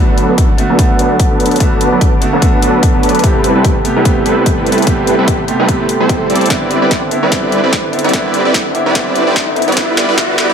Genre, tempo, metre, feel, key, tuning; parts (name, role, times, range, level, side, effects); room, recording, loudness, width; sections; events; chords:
future bass; 147 BPM; 4/4; swing 56% on 16ths, half-time; A4 = 439 Hz
bright concert grand piano; accompaniment; 0.0-10.5 s; C3 to G4; -16 LUFS; right 1 dB; sidechain pumping, dub echo
ethereal airy pad; sustained chords; 1.2-10.5 s; A4 to D6; -21 LUFS; equal; ensemble chorus, built-in reverb, phaser, sidechain pumping
supersaw chords; riff; 0.0-10.5 s; F#3 to D5; -14 LUFS; right 1 dB; sidechain pumping, low-pass filter, dub echo
saturated sub bass; bass; 0.0-10.5 s; barely audible
trap drum kit; drums; 0.2-10.5 s; hi-hat, snare drum; -19 LUFS; left 2 dB; high-pass filter on hats, studio reverb, high-pass filter on snare
electronic kick drum; drums; 0.4-10.3 s; -14 LUFS; equal; studio reverb
riser; sound effects; 7.8-10.5 s; -22 LUFS; left 2 dB
light reverb, digital ambience; high-pass filter; -10 LUFS; side -7 dB against mid
0.0-10.5 A section
build-up 0.0-10.5; filter sweep on supersaw synth 0.0-10.5; filter sweep 0.0-10.5; drum fill 6.5-10.5; riser 7.8-10.5
0.0 Bm7; 3.2 Am9; 6.5 Cmaj9; 9.8 Em11